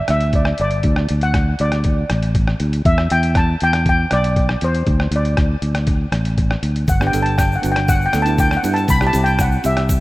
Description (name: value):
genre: calypso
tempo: 119 BPM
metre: 4/4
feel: straight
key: G major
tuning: A4 = 440 Hz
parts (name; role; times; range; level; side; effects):
- steel pan; melody; 0.0-10.0 s; C5 to B5; -20 LUFS; equal; none
- fingered electric bass; bass; 0.1-10.0 s; G1 to G2; -18 LUFS; equal; none
- lo-fi sampler-style drum kit; drums; 0.1-10.0 s; hi-hat, kick drum, rim click; -20 LUFS; equal; none
- egg shaker; percussion; 6.9-10.0 s; none; -34 LUFS; right 2 dB; none
- steel pan; accompaniment; 7.0-9.9 s; B3 to A4; -24 LUFS; right 2 dB; none
room: light reverb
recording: rough home demo mix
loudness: -15 LUFS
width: side -18 dB against mid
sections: 0.0-10.0 A section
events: none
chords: 0.0 G5; 0.8 D5; 2.9 E5; 4.9 D5; 6.9 Gmaj7; 8.9 C